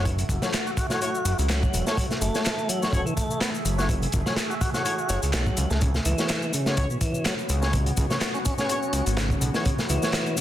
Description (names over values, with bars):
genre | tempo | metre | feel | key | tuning
breakbeat, breaks | 125 BPM | 4/4 | swing 55% on 16ths | F# minor | A4 = 438 Hz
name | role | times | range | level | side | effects
deep dark ambient pad | sustained chords | 0.0-10.4 s | A3 to E5 | -33 LUFS | equal | chorus, built-in reverb, sidechain pumping
tonewheel organ | riff | 0.0-10.4 s | B2 to F#4 | -30 LUFS | equal | overdrive, vintage 12-bit sampler grit, tape echo
mellow brass ensemble | stabs | 0.0-10.1 s | A3 to C#5 | -33 LUFS | left 2 dB | tape echo
fat analog bass | bass | 0.0-10.0 s | E1 to C#2 | -25 LUFS | equal | tube saturation
crunchy breakbeat drum kit | drums | 0.1-10.4 s | hi-hat, kick drum, snare drum | -27 LUFS | equal | none
electronic shaker and handclaps | drums | 0.1-10.4 s | none | -33 LUFS | left 2 dB | none
room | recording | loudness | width
light reverb, small room reverb | dense, heavily limited modern master | -22 LUFS | side -12 dB against mid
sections
0.0-10.4 A section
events
none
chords
0.0 F#m7; 5.8 C#7sus4